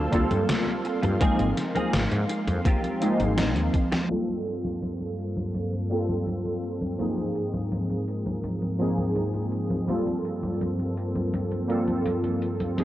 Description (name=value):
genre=vaporwave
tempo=83 BPM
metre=4/4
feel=straight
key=G minor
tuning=A4 = 440 Hz
part: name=warbly lo-fi synth keys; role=accompaniment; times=0.0-12.8 s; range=F3 to A4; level=-27 LUFS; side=equal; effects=analog chorus, analog delay
part: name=soft string machine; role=sustained chords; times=0.0-12.8 s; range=G2 to C6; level=-31 LUFS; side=equal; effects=ensemble chorus
part: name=clean electric guitar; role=riff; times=0.0-4.0 s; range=Bb3 to A4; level=-32 LUFS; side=equal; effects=ensemble chorus, analog delay
part: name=woody fretless electric bass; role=bass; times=0.0-3.7 s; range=Ab1 to Ab2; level=-26 LUFS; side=equal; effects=wide subtle chorus
part: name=electronic kick drum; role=drums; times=0.1-3.9 s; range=none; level=-24 LUFS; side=equal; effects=overdrive
part: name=gated 80s digital drum machine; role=drums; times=0.1-12.8 s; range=congas, hi-hat, snare drum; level=-32 LUFS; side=equal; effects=gated reverb, gated reverb snare, overdrive
room=light reverb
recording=worn, warbling old tape, cassette tape, warbly pitch drift, low-pass filter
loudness=-24 LUFS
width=side -14 dB against mid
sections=0.0-4.1 A section; 4.1-12.8 B section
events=drum fill 3.4-4.1; band accent 3.9-4.3; filter sweep on string machine 4.1-12.8; filter sweep 4.1-12.8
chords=0.0 Gm11; 1.2 Ab69; 4.1 Gm11; 7.0 Ab69; 9.9 Gm11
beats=0.49 | 1.21 1.93 2.66 3.38 | 4.10 4.83 5.55 6.27 | 6.99 7.72 8.44 9.16 | 9.89 10.61 11.33 12.05 | 12.78